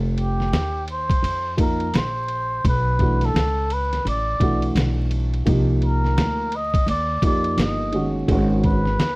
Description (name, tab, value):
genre	hip hop, jazz-hop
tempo	85 BPM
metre	4/4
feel	swing 61% on 16ths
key	unclear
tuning	A4 = 440 Hz
part	upright bass	bass	0.0-9.2 s	F1 to F2	-23 LUFS	equal	none
part	trumpet with cup mute	melody	0.2-9.2 s	G4 to Eb5	-24 LUFS	equal	none
part	lo-fi sampler-style drum kit	drums	0.2-9.2 s	hi-hat, kick drum, ride cymbal, snare drum	-23 LUFS	equal	none
part	dark concert grand piano	accompaniment	1.6-8.8 s	Eb3 to Bb4	-24 LUFS	right 1 dB	none
room	little or no reverb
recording	dry, close 1970s-style studio recording, vinyl crackle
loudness	-18 LUFS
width	side -26 dB against mid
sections	0.0-9.2 A section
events	none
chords	0.0 F9sus4; 2.6 Bm11; 5.5 Cm11; 8.3 Abm11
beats	0.52 1.23 1.93 | 2.64 3.35 4.05 4.76 | 5.46 6.17 6.87 7.58 | 8.29 8.99